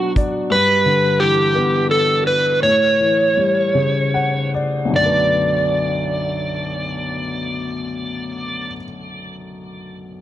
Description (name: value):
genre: pop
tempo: 48-58 BPM (dotted quarters)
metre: 6/8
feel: straight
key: B minor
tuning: A4 = 439 Hz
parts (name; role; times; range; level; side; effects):
- overdriven slide guitar; melody; 0.0-8.7 s; F#4 to D5; -18 LUFS; right 1 dB; tape echo
- warm upright piano; accompaniment; 0.0-10.2 s; B1 to F#5; -21 LUFS; left 2 dB; none
room: light reverb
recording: none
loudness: -15 LUFS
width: side -12 dB against mid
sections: 0.0-5.0 A section; 5.0-9.9 B section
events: upright piano fill 0.0-0.5, 3.8-5.0; slowing down 0.5-5.0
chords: 0.0 Bm; 0.5 G6; 2.6 A7; 5.0 Bm7